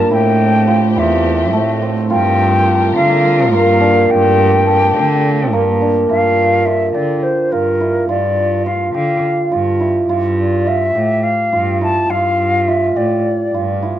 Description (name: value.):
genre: contemporary instrumental, chamber music in an uneven meter.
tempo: 210 BPM (eighths).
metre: 7/8.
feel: straight.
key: G dorian.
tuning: A4 = 438 Hz.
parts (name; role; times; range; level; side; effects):
hollow concert flute; melody; 0.0-13.8 s; Bb4 to A5; -17 LUFS; left 3 dB; none.
dark studio string section; sustained chords; 0.0-6.1 s; G3 to Bb4; -22 LUFS; equal; none.
cimbalom; arpeggios; 0.0-14.0 s; A3 to A4; -16 LUFS; right 1 dB; none.
rich cello; bass; 0.0-14.0 s; E2 to D3; -18 LUFS; right 2 dB; none.
room: moderate studio reverb, RT60 0.6 s.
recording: worn, warbling old tape, cassette tape, warbly pitch drift.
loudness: -12 LUFS.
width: side -11 dB against mid.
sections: 0.0-6.1 A section; 6.1-14.0 B section.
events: none.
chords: 0.1 Am7; 2.1 Gm7; 10.1 Dm/G.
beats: | 0.11 0.39 0.68 0.96 1.25 1.53 1.82 | 2.10 2.39 2.68 2.96 3.25 3.53 3.82 | 4.10 4.39 4.67 4.96 5.24 5.53 5.82 | 6.10 6.39 6.67 6.96 7.24 7.53 7.81 | 8.10 8.39 8.67 8.96 9.24 9.53 9.82 | 10.10 10.39 10.67 10.96 11.25 11.53 11.82 | 12.10 12.39 12.68 12.96 13.25 13.54 13.82.